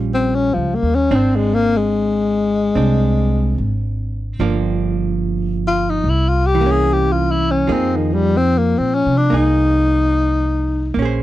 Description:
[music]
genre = jazz ballad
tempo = 73 BPM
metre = 4/4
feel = swing 67% on 8ths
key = unclear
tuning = A4 = 439 Hz
[part]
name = hollow-body jazz guitar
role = accompaniment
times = 0.0-11.2 s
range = Eb3 to C5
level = -22 LUFS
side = right 6 dB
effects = none
[part]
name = upright bass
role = bass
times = 0.0-11.2 s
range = G1 to C3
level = -19 LUFS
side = right 1 dB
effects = none
[part]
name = breathy tenor saxophone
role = melody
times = 0.1-11.0 s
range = Eb3 to Ab4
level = -17 LUFS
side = left 3 dB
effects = none
[sound]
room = little or no reverb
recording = dry, close 1970s-style studio recording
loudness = -14 LUFS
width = side -14 dB against mid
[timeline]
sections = 0.0-11.2 A section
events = tenor saxophone solo 0.0-11.2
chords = 0.0 Eb9; 1.1 Ab; 4.4 Gm7; 6.0 C7b9; 7.7 Fm7

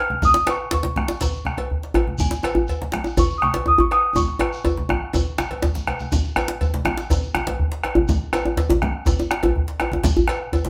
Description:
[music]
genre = west african traditional, West African drum ensemble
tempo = 122 BPM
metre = 4/4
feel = straight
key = Db major pentatonic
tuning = A4 = 440 Hz
[part]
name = celesta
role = melody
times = 0.0-5.8 s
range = Ab5 to F6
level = -23 LUFS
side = equal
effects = none
[part]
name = bombo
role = percussion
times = 0.1-10.6 s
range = none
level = -26 LUFS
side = equal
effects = none
[part]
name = congas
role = percussion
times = 0.1-10.7 s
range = none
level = -30 LUFS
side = equal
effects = none
[part]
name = djembe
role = percussion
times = 0.2-10.7 s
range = none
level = -32 LUFS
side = equal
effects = none
[part]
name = shekere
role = percussion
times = 0.2-10.6 s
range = none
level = -35 LUFS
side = equal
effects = none
[part]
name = djembe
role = percussion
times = 0.3-10.7 s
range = none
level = -24 LUFS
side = equal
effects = none
[part]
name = cowbell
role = percussion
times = 0.5-10.6 s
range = none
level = -33 LUFS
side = equal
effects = none
[sound]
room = moderate studio ambience, RT60 0.5 s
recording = band playing live in one room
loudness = -21 LUFS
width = mono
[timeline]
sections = 0.0-6.1 A section; 6.1-10.7 B section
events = drum fill 4.2-6.1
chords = none

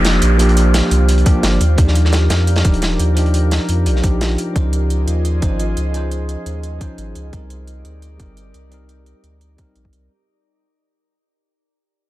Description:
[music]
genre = liquid drum and bass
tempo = 173 BPM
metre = 4/4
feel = straight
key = unclear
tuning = A4 = 440 Hz
[part]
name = bell-like tine electric piano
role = accompaniment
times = 0.0-10.1 s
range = F3 to C5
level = -21 LUFS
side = equal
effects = low-pass filter, digital delay
[part]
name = glassy FM pad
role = sustained chords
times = 0.0-10.1 s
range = Eb4 to Eb5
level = -26 LUFS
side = right 1 dB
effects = ensemble chorus, built-in reverb
[part]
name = warm sub bass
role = bass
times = 0.0-10.1 s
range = Eb1 to F2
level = -16 LUFS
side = equal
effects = none
[part]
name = electronic hi-hat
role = drums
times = 0.0-10.0 s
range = none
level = -29 LUFS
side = right 4 dB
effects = none
[part]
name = downlifter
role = sound effects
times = 0.0-1.8 s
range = none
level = -24 LUFS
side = equal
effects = none
[part]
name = crunchy breakbeat drum kit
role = drums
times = 0.1-4.5 s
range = hi-hat, snare drum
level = -22 LUFS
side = equal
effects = high-pass filter on hats, high-pass filter on snare, high-pass filter on room
[part]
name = electronic kick drum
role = drums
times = 1.3-9.9 s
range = none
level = -16 LUFS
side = equal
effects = none
[sound]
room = little or no reverb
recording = dark, warm production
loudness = -13 LUFS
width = side -16 dB against mid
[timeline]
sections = 0.0-10.1 A section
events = fade-out 0.0-10.1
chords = 0.0 Bb6; 1.6 Ebmaj9; 4.6 Dbmaj9; 7.3 Cm7

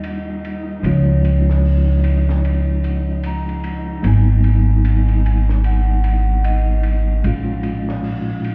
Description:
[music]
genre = trip hop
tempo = 75 BPM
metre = 4/4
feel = swing 60% on 16ths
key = G# dorian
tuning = A4 = 442 Hz
[part]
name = vibraphone with medium mallets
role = melody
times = 0.0-8.5 s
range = C#5 to A#5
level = -33 LUFS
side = equal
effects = tape echo
[part]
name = bell-like tine electric piano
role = accompaniment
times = 0.0-8.5 s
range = A#2 to E#4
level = -25 LUFS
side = equal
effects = tremolo
[part]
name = upright bass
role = bass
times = 0.0-8.5 s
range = G#1 to D#2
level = -18 LUFS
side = equal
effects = tube saturation
[part]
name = crunchy breakbeat drum kit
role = drums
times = 0.0-8.5 s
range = hi-hat, ride cymbal, snare drum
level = -37 LUFS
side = equal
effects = high-pass filter on cymbals, high-pass filter on hats, high-pass filter on snare, high-pass filter on room
[part]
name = flickering grainy texture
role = texture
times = 0.0-8.5 s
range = D#4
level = -38 LUFS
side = equal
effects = none
[sound]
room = studio ambience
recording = heard muffled through a wall, stone room reverb, EQ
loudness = -17 LUFS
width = mono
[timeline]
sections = 0.0-8.5 A section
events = none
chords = 0.0 D#add9; 0.8 C#; 4.0 G#m7; 7.2 A#m7

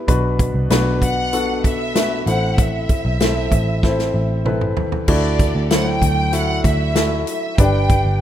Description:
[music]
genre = piano-driven pop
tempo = 96 BPM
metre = 4/4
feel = straight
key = unclear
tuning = A4 = 440 Hz
[part]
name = warm baby grand piano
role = accompaniment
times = 0.0-8.2 s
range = G2 to E5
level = -22 LUFS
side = left 2 dB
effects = none
[part]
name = vintage muted picked electric bass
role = bass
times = 0.1-8.2 s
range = G1 to D2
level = -20 LUFS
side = right 1 dB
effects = none
[part]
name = natural country drum kit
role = drums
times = 0.1-8.0 s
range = crash cymbal, hi-hat, kick drum, snare drum, toms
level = -19 LUFS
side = equal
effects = none
[part]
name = warm symphonic violin section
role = melody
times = 1.0-8.2 s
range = D5 to G5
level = -23 LUFS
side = equal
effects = none
[sound]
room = light reverb, small room reverb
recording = rough home demo mix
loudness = -15 LUFS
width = side -11 dB against mid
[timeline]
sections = 0.0-5.1 A section; 5.1-8.2 B section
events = drum fill 3.8-5.1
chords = 0.1 Bm; 2.3 Am; 5.1 Dadd9; 7.6 G

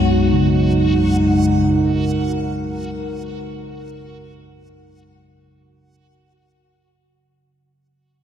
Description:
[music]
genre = ambient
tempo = free time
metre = none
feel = none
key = unclear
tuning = A4 = 441 Hz
[part]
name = dark analog pad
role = sustained chords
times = 0.0-6.4 s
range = G#3 to C#5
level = -19 LUFS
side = equal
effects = chorus
[part]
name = bronze singing bowl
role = arpeggios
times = 0.0-7.0 s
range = C#3 to F#3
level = -24 LUFS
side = right 1 dB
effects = diffuse ambient delay
[part]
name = deep rumbling drone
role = drone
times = 0.0-6.6 s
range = B1 to F#2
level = -21 LUFS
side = equal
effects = built-in reverb
[part]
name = backwards swelling texture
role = texture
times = 0.0-6.5 s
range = F#4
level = -27 LUFS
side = right 2 dB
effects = built-in reverb
[sound]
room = wet cathedral reverb, RT60 5.0 s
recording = none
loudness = -15 LUFS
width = side -9 dB against mid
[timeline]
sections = 0.0-6.4 A section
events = fade-out 0.0-6.4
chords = 0.0 G#m7

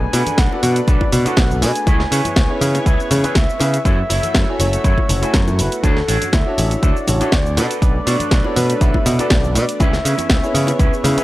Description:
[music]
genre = nu-disco, nu disco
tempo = 121 BPM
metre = 4/4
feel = swing 54% on 16ths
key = unclear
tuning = A4 = 439 Hz
[part]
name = soft octave-layered synth lead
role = melody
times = 0.0-11.2 s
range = A4 to G#5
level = -24 LUFS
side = left 1 dB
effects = chorus, tape echo
[part]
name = lush unison pad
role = sustained chords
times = 0.0-11.2 s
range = A3 to E5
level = -29 LUFS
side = equal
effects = chorus, sidechain pumping
[part]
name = electric guitar with an envelope filter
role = riff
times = 0.0-11.2 s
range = C#4 to E5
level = -26 LUFS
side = right 2 dB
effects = wide subtle chorus
[part]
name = modern bright picked electric bass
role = bass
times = 0.0-11.2 s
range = F#1 to C#3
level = -18 LUFS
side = equal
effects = sidechain pumping
[part]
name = house drum kit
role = drums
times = 0.1-11.2 s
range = cabasa, hi-hat, snare drum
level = -21 LUFS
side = equal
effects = none
[part]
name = bongos and congas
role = percussion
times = 0.1-11.1 s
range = none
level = -28 LUFS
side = left 2 dB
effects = none
[part]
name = electronic kick drum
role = drums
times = 0.4-10.9 s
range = none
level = -16 LUFS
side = equal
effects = none
[part]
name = warm concert grand piano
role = accompaniment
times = 0.5-11.2 s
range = A3 to G#5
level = -24 LUFS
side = left 1 dB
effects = sidechain pumping, tape echo
[sound]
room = digital ambience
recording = dry, gritty hardware recording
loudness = -14 LUFS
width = side -16 dB against mid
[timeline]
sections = 0.0-11.2 A section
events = none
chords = 0.0 Bm7; 1.9 C#m7; 3.9 F#m7; 5.8 Dmaj7; 7.6 Bm7; 9.8 C#m7

